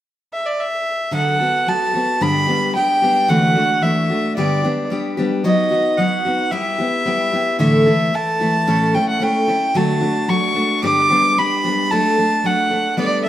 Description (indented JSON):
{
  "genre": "folk",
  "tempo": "111 BPM",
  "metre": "4/4",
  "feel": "straight",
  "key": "D major",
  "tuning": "A4 = 441 Hz",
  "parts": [
    { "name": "warm fiddle", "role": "melody", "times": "0.3-13.3 s", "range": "D5 to D6", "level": "-18 LUFS", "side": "right 1 dB", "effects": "none" },
    { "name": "picked steel-string acoustic guitar", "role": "accompaniment", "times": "1.1-13.3 s", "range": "G2 to A4", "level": "-18 LUFS", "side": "left 1 dB", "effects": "none" }
  ],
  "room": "wet studio reverb, RT60 0.8 s",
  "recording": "heard from further back in the room",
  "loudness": "-15 LUFS",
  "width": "side -12 dB against mid",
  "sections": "0.0-1.1 A section; 1.1-13.3 B section",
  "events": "none",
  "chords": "0.0 N.C.; 1.1 D6; 2.2 G; 3.3 Dadd9; 4.4 G; 5.4 B/F#; 6.5 Em/G; 7.6 Asus4; 8.7 A; 9.8 D; 10.8 G; 11.9 D/F#"
}